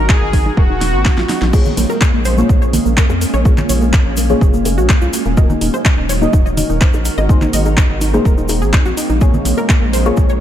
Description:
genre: progressive house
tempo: 125 BPM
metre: 4/4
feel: straight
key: Bb minor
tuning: A4 = 440 Hz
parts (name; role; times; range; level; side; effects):
- soft supersaw; melody; 0.0-1.4 s; Gb4 to Ab4; -22 LUFS; equal; sidechain pumping, dub echo
- shimmering ambient pad; sustained chords; 0.0-10.4 s; Eb3 to Bb4; -22 LUFS; right 2 dB; chorus, built-in reverb, sidechain pumping
- wide unison pluck; arpeggios; 0.0-10.4 s; Bb3 to Eb5; -21 LUFS; right 1 dB; sidechain pumping, ping-pong delay
- round analog bass; bass; 0.0-10.4 s; Eb1 to F2; -18 LUFS; equal; sidechain pumping
- deep house drum kit; drums; 0.1-10.0 s; crash cymbal, handclaps, hi-hat, snare drum; -21 LUFS; equal; studio reverb
- electronic kick drum; drums; 0.1-10.3 s; none; -12 LUFS; equal; overdrive, studio reverb
- congas and bongos; percussion; 0.3-10.1 s; none; -26 LUFS; left 2 dB; sidechain pumping on perc
- deep mellow chord stab; stabs; 1.5-10.4 s; Bb3 to Eb5; -21 LUFS; left 2 dB; chorus, phaser, sidechain pumping, ping-pong delay
- egg shaker; percussion; 1.5-10.4 s; none; -30 LUFS; left 3 dB; none
room: light reverb, digital ambience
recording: dark, warm production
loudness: -11 LUFS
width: side -11 dB against mid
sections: 0.0-10.4 A section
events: drum fill 0.8-1.5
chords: 0.0 Abadd9; 1.5 Bbm7; 5.4 Ebm; 7.3 Abadd9; 9.2 Bbm7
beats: 0.09 0.57 1.05 | 1.53 2.01 2.49 2.97 | 3.45 3.93 4.41 4.89 | 5.37 5.85 6.33 6.81 | 7.29 7.77 8.25 8.73 | 9.21 9.69 10.17

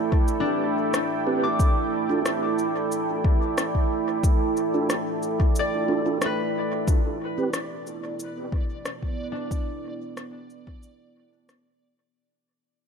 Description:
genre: ambient dub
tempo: 91 BPM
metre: 4/4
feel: straight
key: unclear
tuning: A4 = 440 Hz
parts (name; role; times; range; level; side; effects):
- deep dark ambient pad; sustained chords; 0.0-12.2 s; A3 to G5; -27 LUFS; right 3 dB; chorus, built-in reverb
- electronic kick drum; drums; 0.1-10.8 s; none; -22 LUFS; left 1 dB; none
- electronic shaker and rim click; drums; 0.3-11.6 s; none; -31 LUFS; left 1 dB; overdrive, dub echo
- concert harp; arpeggios; 0.4-12.1 s; D4 to D6; -31 LUFS; left 4 dB; low-pass filter, dub echo
- mellow tonewheel organ; stabs; 1.3-7.5 s; C4 to B4; -31 LUFS; right 3 dB; chorus vibrato, fast rotary speaker, dub echo
- backwards swelling texture; texture; 7.4-12.2 s; D5; -42 LUFS; right 1 dB; built-in reverb
room: moderate echo chamber reverb, RT60 2.4 s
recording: none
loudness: -22 LUFS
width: side -6 dB against mid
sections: 0.0-6.9 A section; 6.9-12.1 B section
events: fade-out 6.9-12.1; filter sweep on harp 6.9-12.1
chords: 0.0 Am7; 1.6 Bm7 (rootless); 6.9 A7(no3)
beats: 0.28 0.94 | 1.60 2.26 2.92 3.58 | 4.24 4.89 5.55 6.21 | 6.87 7.53 8.19 8.85 | 9.51 10.17 10.83 11.49

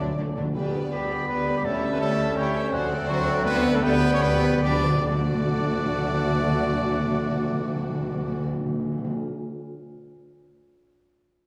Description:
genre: quick classical-period movement for symphony orchestra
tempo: 135-167 BPM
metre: 3/4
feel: straight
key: D major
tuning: A4 = 440 Hz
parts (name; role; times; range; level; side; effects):
- rich chamber violin section; melody; 0.0-8.5 s; B4 to E5; -38 LUFS; equal; none
- mellow clarinet; second line; 0.0-8.5 s; B3 to D5; -38 LUFS; equal; none
- mellow hollow silver concert flute; second line; 0.0-8.5 s; D5 to D6; -39 LUFS; equal; none
- rich studio violin section; second line; 0.0-8.4 s; D4 to B4; -40 LUFS; equal; none
- warm oboe; second line; 0.0-8.5 s; D5 to B5; -36 LUFS; equal; none
- mellow bassoon; accompaniment; 0.0-8.5 s; F#3 to A3; -35 LUFS; equal; none
- rich chamber viola section; accompaniment; 0.0-8.5 s; F#3 to E4; -38 LUFS; equal; none
- mellow French horn section; sustained chords; 0.0-8.5 s; F#3 to A4; -37 LUFS; equal; none
- mellow trumpet; stabs; 0.0-8.5 s; D4 to D5; -33 LUFS; equal; none
- warm chamber cello section; bass; 0.0-8.5 s; D3 to D4; -33 LUFS; equal; none
- warm chamber double bass section; bass; 0.0-8.5 s; D2; -32 LUFS; equal; none
- timpani; percussion; 0.0-9.2 s; D3; -31 LUFS; equal; none
room: wet recital hall reverb, RT60 1.6 s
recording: recorded in a church or concert hall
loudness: -24 LUFS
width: mono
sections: 0.6-5.1 A section; 5.1-7.7 B section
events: timpani fill 0.0-0.6, 3.8-5.1; slowing down 2.2-5.1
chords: 0.0 D; 0.6 G/D; 1.7 A7/D; 2.7 D7; 3.8 G/D; 5.1 D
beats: 0.20 | 0.57 0.93 1.29 | 1.66 2.01 2.37 | 2.73 3.10 3.46 | 3.84 4.23 4.64 | 5.08 5.51 5.95 | 6.39 6.83 7.26

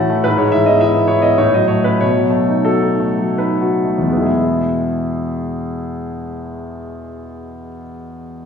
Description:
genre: classical, romantic character piece for solo piano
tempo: 66-111 BPM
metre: 3/4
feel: rubato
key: E major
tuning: A4 = 440 Hz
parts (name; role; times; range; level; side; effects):
- clear concert grand piano; solo; 0.0-8.5 s; E2 to A5; -15 LUFS; equal; none
room: wet recital hall reverb, RT60 1.3 s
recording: heard from further back in the room, studio reverb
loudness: -13 LUFS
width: side -6 dB against mid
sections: 0.0-4.3 A section; 4.3-8.5 B section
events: slowing down 0.0-4.3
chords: 0.2 E/G#; 1.4 F#m/A; 2.0 B9; 4.3 E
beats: | 0.25 0.82 1.41 | 2.01 2.65 3.40 | 4.27 5.13 5.98 | 6.81 7.67

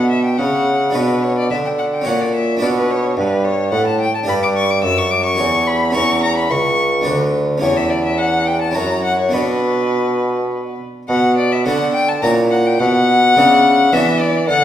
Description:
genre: classical, baroque-style sonata movement with continuo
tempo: 107 BPM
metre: 3/4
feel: rubato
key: B minor from 4.3 s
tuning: A4 = 440 Hz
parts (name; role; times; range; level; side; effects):
- rich violin; melody; 0.0-14.6 s; B4 to E6; -17 LUFS; left 3 dB; none
- harpsichord; accompaniment; 0.0-14.6 s; C#2 to D5; -20 LUFS; right 1 dB; none
- warm bassoon; bass; 0.0-14.6 s; C#2 to E3; -18 LUFS; right 1 dB; none
room: wet recital hall reverb, RT60 1.4 s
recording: heard from further back in the room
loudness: -13 LUFS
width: side -11 dB against mid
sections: 0.0-11.1 A section; 11.1-14.6 B section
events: none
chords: 0.0 D; 0.9 Bm; 2.1 F#/A#; 2.6 Bm; 4.3 G5; 5.4 C#dim/E; 6.0 F#7/E; 7.1 Bm/D; 7.6 C#dim/E; 8.8 F#7; 9.3 Bm; 12.2 F#7/A#; 12.8 Bm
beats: 0.39 | 0.95 1.51 2.06 | 2.62 3.17 3.72 | 4.28 4.83 5.39 | 5.95 6.51 7.06 | 7.62 8.19 8.76 | 9.34 9.92 10.50 | 11.09 11.65 12.22 | 12.80 13.36 13.93 | 14.49

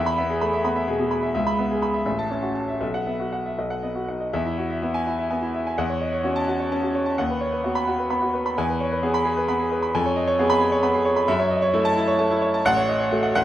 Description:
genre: classical, virtuoso piano study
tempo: 78-90 BPM (dotted quarters)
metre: 6/8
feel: rubato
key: E major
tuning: A4 = 440 Hz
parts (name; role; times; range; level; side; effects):
- clear concert grand piano; solo; 0.0-13.4 s; A1 to B5; -20 LUFS; equal; none
room: moderate recital hall reverb, RT60 1.5 s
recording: none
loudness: -20 LUFS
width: side -12 dB against mid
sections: 0.0-4.3 A section; 4.3-13.4 B section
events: none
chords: 0.0 E; 1.3 C#m7; 2.1 F#m7/A; 2.8 Bsus4; 3.6 B; 4.3 E; 5.8 F#m7/E; 7.2 B/D#; 8.6 E; 9.9 C#7/E#; 11.3 F#m7; 12.7 F#m/A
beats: 0.64 | 1.34 2.06 | 2.81 3.58 | 4.33 5.05 | 5.77 6.47 | 7.18 7.88 | 8.57 9.26 | 9.94 10.61 | 11.29 11.97 | 12.65 13.36

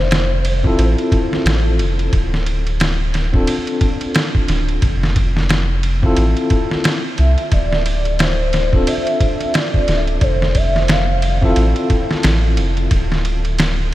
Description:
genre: trip hop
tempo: 89 BPM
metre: 4/4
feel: swing 59% on 16ths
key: unclear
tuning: A4 = 441 Hz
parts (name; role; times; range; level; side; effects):
- pure breathy sine lead; melody; 0.0-0.8, 7.2-11.6 s; C5 to F5; -23 LUFS; equal; analog chorus, tape echo
- soft dub sub bass; bass; 0.0-13.9 s; D1 to C2; -17 LUFS; equal; none
- trip hop sampler-style drum kit; drums; 0.1-13.8 s; kick drum, ride cymbal, snare drum; -18 LUFS; equal; studio reverb
- bell-like tine electric piano; accompaniment; 0.6-12.9 s; C4 to A4; -22 LUFS; left 1 dB; tremolo, low-pass filter, tape echo
room: light reverb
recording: none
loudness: -14 LUFS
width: side -15 dB against mid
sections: 0.0-13.9 A section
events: filter sweep on tine electric piano 0.0-13.9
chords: 0.0 Fmaj7; 2.1 Dm7; 4.8 Fmaj7; 7.5 Dm7; 10.2 Fmaj7; 12.9 N.C.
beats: 0.11 0.78 1.46 | 2.13 2.80 3.48 4.15 | 4.83 5.50 6.17 6.85 | 7.52 8.20 8.87 9.54 | 10.22 10.89 11.57 12.24 | 12.92 13.59

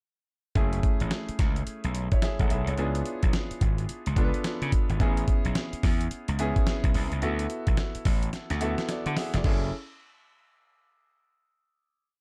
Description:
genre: R&B, new jack swing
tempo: 108 BPM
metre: 4/4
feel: swing 62% on 16ths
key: F# minor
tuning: A4 = 440 Hz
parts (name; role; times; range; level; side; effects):
- clear concert grand piano; accompaniment; 0.6-9.7 s; A3 to F#5; -35 LUFS; equal; none
- gritty slap bass; bass; 0.6-9.7 s; E#1 to D3; -31 LUFS; equal; overdrive
- dusty soul sampler-style drum kit; drums; 0.6-9.6 s; crash cymbal, hi-hat, kick drum, snare drum; -28 LUFS; equal; none
room: little or no reverb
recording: none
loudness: -27 LUFS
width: mono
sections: 0.6-9.4 verse; 9.4-11.7 final chord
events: drum fill 8.3-9.4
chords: 0.6 F#m9; 2.8 C#7b9; 5.0 Amaj9 (rootless); 7.2 D6; 9.4 F#m9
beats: | 0.56 1.11 1.67 2.22 | 2.78 3.33 3.89 4.44 | 5.00 5.55 6.11 6.67 | 7.22 7.78 8.33 8.89 | 9.44

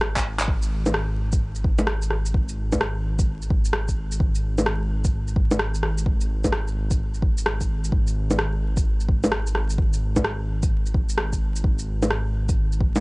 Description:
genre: future garage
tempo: 129 BPM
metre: 4/4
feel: swing 64% on 16ths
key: unclear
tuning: A4 = 441 Hz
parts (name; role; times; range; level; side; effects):
- dark detuned saw bass; bass; 0.0-13.0 s; G#1; -25 LUFS; equal; sidechain pumping
- electronic rim click, handclaps, shaker and bongos; drums; 0.0-13.0 s; none; -25 LUFS; equal; none
- electronic kick drum; drums; 0.2-12.9 s; none; -23 LUFS; equal; none
room: little or no reverb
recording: dry, gritty hardware recording, vinyl crackle, nothing above 10.8 kHz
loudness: -21 LUFS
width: side -26 dB against mid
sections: 0.5-13.0 A section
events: drum fill 0.1-0.5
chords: none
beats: 0.01 | 0.48 0.94 1.41 1.87 | 2.34 2.80 3.27 3.73 | 4.20 4.66 5.13 5.59 | 6.06 6.52 6.99 7.45 | 7.92 8.38 8.85 9.31 | 9.78 10.24 10.71 11.18 | 11.64 12.11 12.57

